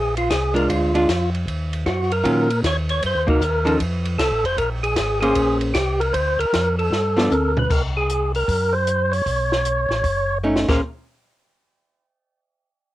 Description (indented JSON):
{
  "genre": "soul jazz organ trio",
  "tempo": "154 BPM",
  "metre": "4/4",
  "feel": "swing 65% on 8ths",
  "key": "Bb minor",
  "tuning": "A4 = 439 Hz",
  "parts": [
    { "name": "percussive tonewheel organ", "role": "melody", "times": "0.0-10.8 s", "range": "F4 to Db5", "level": "-21 LUFS", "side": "equal", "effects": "slow rotary speaker, overdrive, cassette tape" },
    { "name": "mellow tonewheel organ", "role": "bass", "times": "0.0-10.8 s", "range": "F1 to Bb2", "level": "-24 LUFS", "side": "equal", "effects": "slow rotary speaker" },
    { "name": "compact cocktail drum kit", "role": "drums", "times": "0.2-10.7 s", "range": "crash cymbal, hi-hat, kick drum, ride cymbal, snare drum, toms", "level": "-25 LUFS", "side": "equal", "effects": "cassette tape" },
    { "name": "archtop guitar, miked and amplified", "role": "accompaniment", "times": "0.5-7.3, 10.4-10.8 s", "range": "Eb3 to C5", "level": "-19 LUFS", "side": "equal", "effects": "cassette tape" }
  ],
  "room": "little or no reverb",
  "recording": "home recording on cassette",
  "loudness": "-18 LUFS",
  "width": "side -15 dB against mid",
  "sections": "0.0-7.7 A section; 7.7-10.8 B section; 10.8-12.4 C section",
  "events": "band accent 3.2; drum fill 6.9-7.7, 10.4-10.8",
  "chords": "0.0 Bb7; 1.5 Ebm9; 3.0 Cm7b5; 3.8 F; 4.6 Bbm9; 6.1 Dm7; 6.9 G7; 7.7 Ab9/C; 9.3 B9; 10.6 Bbm9; 10.8 N.C."
}